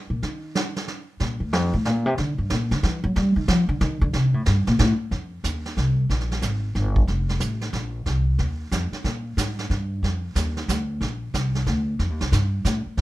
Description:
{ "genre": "jazz piano trio", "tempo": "183 BPM", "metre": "3/4", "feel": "swing 64% on 8ths", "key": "F mixolydian", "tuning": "A4 = 440 Hz", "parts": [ { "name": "upright bass", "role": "bass", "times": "0.1-13.0 s", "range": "F1 to G3", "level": "-22 LUFS", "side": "equal", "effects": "none" }, { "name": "vintage brush drum kit", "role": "drums", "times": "0.2-13.0 s", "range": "brushed snare drum, hi-hat, kick drum, snare drum", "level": "-27 LUFS", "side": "right 2 dB", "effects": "none" } ], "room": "little or no reverb", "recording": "minimal, uncompressed stereo recording", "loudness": "-21 LUFS", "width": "side -17 dB against mid", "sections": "0.0-5.1 A section; 5.1-13.0 B section", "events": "upright bass solo 0.0-5.1", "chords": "none", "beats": "| 0.22 0.55 0.87 | 1.20 1.53 1.85 | 2.18 2.50 2.83 | 3.15 3.48 3.81 | 4.13 4.46 4.79 | 5.11 5.44 5.77 | 6.09 6.42 6.75 | 7.08 7.41 7.73 | 8.06 8.39 8.72 | 9.04 9.37 9.70 | 10.03 10.35 10.68 | 11.01 11.34 11.66 | 11.99 12.32 12.65 | 12.97" }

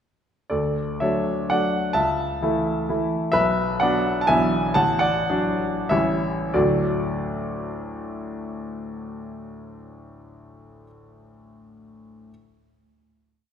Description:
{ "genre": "classical, romantic triple-time dance for piano with dotted rhythms", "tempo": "86-137 BPM", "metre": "3/4", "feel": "rubato", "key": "D major", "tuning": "A4 = 441 Hz", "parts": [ { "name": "clear grand piano", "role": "solo", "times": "0.5-12.3 s", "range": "A1 to A5", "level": "-21 LUFS", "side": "equal", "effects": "none" } ], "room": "wet concert hall reverb, RT60 2.2 s", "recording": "minimal, uncompressed stereo recording", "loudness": "-20 LUFS", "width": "side -8 dB against mid", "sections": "0.5-6.6 A section; 6.6-10.2 final chord", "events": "slowing down 2.7-6.6", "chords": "0.5 D; 2.0 A/C#; 3.3 Bm; 4.3 E7/B; 4.8 D/A; 5.9 A7; 6.6 D", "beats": "| 0.52 1.03 1.51 | 1.96 2.43 2.90 | 3.34 3.81 4.28 | 4.75 5.28 5.91 | 6.55 7.16 7.79 | 8.39 9.00 9.60" }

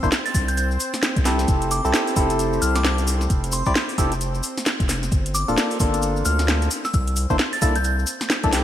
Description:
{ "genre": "UK garage, two-step garage", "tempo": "132 BPM", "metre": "4/4", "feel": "swing 60% on 16ths", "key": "F major", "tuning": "A4 = 440 Hz", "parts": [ { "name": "warm analog pad", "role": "sustained chords", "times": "0.0-8.6 s", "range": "C4 to C5", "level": "-34 LUFS", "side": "right 1 dB", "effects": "chorus, sidechain pumping" }, { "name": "percussive organ stab", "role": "stabs", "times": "0.0-8.6 s", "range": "Bb3 to D5", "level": "-25 LUFS", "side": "equal", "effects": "chorus, ping-pong delay" }, { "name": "saturated sub bass", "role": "bass", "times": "0.0-8.6 s", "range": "D1 to D2", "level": "-23 LUFS", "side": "equal", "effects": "none" }, { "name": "electronic kick drum", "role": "drums", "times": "0.0-8.5 s", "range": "none", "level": "-22 LUFS", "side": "equal", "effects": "small room ambience" }, { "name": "cabasa", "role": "percussion", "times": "0.0-8.6 s", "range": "none", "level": "-32 LUFS", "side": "left 4 dB", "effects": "none" }, { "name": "garage drum kit", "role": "drums", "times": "0.1-8.6 s", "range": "hi-hat, snare drum", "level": "-24 LUFS", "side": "equal", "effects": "small room ambience, gated reverb" }, { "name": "glassy synth bell", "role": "melody", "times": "0.3-7.9 s", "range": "C6 to A6", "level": "-29 LUFS", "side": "equal", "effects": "chorus, ping-pong delay" } ], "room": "light reverb, digital ambience", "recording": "bright 1980s-style digital production, vinyl crackle", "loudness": "-19 LUFS", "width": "side -11 dB against mid", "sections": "0.0-8.6 A section", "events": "none", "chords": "0.0 C6; 1.5 Fmaj9; 5.1 Gm7; 6.7 C13", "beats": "0.12 0.57 1.03 | 1.48 1.94 2.39 2.85 | 3.30 3.76 4.21 4.67 | 5.12 5.57 6.03 6.48 | 6.94 7.39 7.85 8.30" }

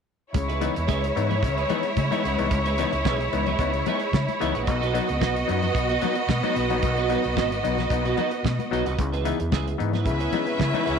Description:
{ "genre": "disco", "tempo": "111 BPM", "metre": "4/4", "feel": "straight", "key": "C# minor", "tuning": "A4 = 438 Hz", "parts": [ { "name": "clear symphonic string section", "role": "second line", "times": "0.3-11.0 s", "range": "G#3 to E5", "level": "-26 LUFS", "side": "equal", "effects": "none" }, { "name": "clean electric guitar", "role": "accompaniment", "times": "0.3-11.0 s", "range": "F#4 to F#5", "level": "-31 LUFS", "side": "right 14 dB", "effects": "analog chorus" }, { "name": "overdriven clav", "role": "accompaniment", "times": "0.3-11.0 s", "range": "B2 to D#4", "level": "-30 LUFS", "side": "left 12 dB", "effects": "none" }, { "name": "overdriven fingered electric bass", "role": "bass", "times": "0.3-11.0 s", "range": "G#1 to C#3", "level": "-28 LUFS", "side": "right 1 dB", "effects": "none" }, { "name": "damped 70s drum kit", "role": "drums", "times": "0.3-11.0 s", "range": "hi-hat, kick drum, snare drum", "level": "-28 LUFS", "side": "right 3 dB", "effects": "none" }, { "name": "congas", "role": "percussion", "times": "0.3-10.9 s", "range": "none", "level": "-33 LUFS", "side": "left 12 dB", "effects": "none" }, { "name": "mellow French horn section", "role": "sustained chords", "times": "9.0-11.0 s", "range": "C#3 to E4", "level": "-31 LUFS", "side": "left 2 dB", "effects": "none" } ], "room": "light reverb, studio reverb", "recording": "1960s-style stereo with parts hard left and right", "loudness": "-22 LUFS", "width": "side -6 dB against mid", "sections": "0.3-11.0 A section", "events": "none", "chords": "0.3 C#m7; 4.7 B; 9.0 C#m7", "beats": "| 0.35 0.89 1.43 1.97 | 2.51 3.05 3.59 4.13 | 4.67 5.21 5.75 6.29 | 6.83 7.37 7.91 8.45 | 8.98 9.52 10.06 10.60" }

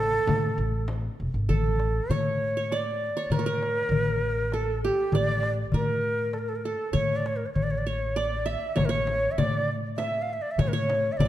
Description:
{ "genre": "Arabic maqam ensemble", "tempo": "99 BPM", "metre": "3/4", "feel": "straight", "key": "A maqam hijaz", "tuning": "A4 = 439 Hz", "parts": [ { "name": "breathy bright ney", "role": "melody", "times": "0.0-11.3 s", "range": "G4 to F5", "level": "-28 LUFS", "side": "equal", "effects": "none" }, { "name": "qanun", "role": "second line", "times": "0.0-11.3 s", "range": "G4 to E5", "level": "-32 LUFS", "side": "right 4 dB", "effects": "none" }, { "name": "upright bass", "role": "bass", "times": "0.0-11.3 s", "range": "E1 to A2", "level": "-29 LUFS", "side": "equal", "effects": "none" }, { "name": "darbuka", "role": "percussion", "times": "0.3-11.3 s", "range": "none", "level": "-30 LUFS", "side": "left 3 dB", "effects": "none" }, { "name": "frame drum", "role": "percussion", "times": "0.3-1.0, 8.8-11.3 s", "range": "none", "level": "-32 LUFS", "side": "left 3 dB", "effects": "none" } ], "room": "wet recital hall reverb, RT60 1.6 s", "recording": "dark, warm production", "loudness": "-24 LUFS", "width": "side -13 dB against mid", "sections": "0.0-1.5 A section; 1.5-11.3 B section", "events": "none", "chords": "none", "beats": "0.28 0.89 | 1.50 2.10 2.71 | 3.31 3.92 4.53 | 5.13 5.74 6.34 | 6.95 7.56 8.17 | 8.77 9.38 9.99 | 10.59 11.20" }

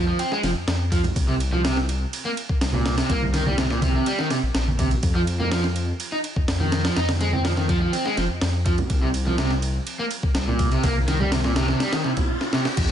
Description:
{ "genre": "breakbeat, breaks", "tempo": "124 BPM", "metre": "4/4", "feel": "straight", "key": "C minor", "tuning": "A4 = 440 Hz", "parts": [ { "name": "overdriven semi-hollow guitar", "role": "riff", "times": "0.0-12.6 s", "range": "Bb2 to Eb4", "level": "-24 LUFS", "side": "right 1 dB", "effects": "low-pass filter, dub echo" }, { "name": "dark detuned saw bass", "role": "bass", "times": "0.0-12.9 s", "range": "F1 to F2", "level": "-25 LUFS", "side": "left 1 dB", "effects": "none" }, { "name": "breakbeat sampler-style drum kit", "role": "drums", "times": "0.2-12.9 s", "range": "crash cymbal, kick drum, ride cymbal, snare drum", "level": "-25 LUFS", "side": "equal", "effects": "none" }, { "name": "congas", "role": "percussion", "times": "1.0-12.3 s", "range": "none", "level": "-31 LUFS", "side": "right 3 dB", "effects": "none" }, { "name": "riser and impact", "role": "sound effects", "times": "10.1-12.9 s", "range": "none", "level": "-32 LUFS", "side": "equal", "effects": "none" } ], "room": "little or no reverb", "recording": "nothing above 10.7 kHz", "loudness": "-20 LUFS", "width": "side -9 dB against mid", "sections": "0.0-12.8 A section", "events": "riser 10.1-12.8; drum fill 12.4-12.8", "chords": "0.0 N.C.; 1.2 C7(no3); 5.0 F7(no3); 8.9 C7(no3)", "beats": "0.19 0.68 | 1.16 1.64 2.13 2.61 | 3.10 3.58 4.06 4.55 | 5.03 5.51 6.00 6.48 | 6.97 7.45 7.93 8.42 | 8.90 9.39 9.87 10.35 | 10.84 11.32 11.81 12.29 | 12.77" }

